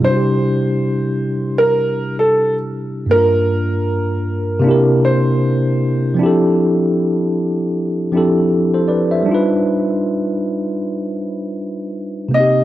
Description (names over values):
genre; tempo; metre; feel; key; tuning
hip hop; 78 BPM; 4/4; swing 58% on 16ths; unclear; A4 = 440 Hz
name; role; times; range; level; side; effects
warm upright piano; melody; 0.0-6.2, 12.3-12.6 s; A4 to Eb5; -17 LUFS; equal; none
tine electric piano; accompaniment; 0.0-12.6 s; G2 to E5; -15 LUFS; equal; medium stereo tremolo, cassette tape
room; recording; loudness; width
moderate spring reverb, RT60 1.6 s, small room ambience; dark, warm production; -14 LUFS; side -14 dB against mid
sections
0.0-12.3 A section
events
none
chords
0.0 Cadd9; 3.1 Gm7; 4.6 C9; 6.2 Fmaj13; 9.3 G7b13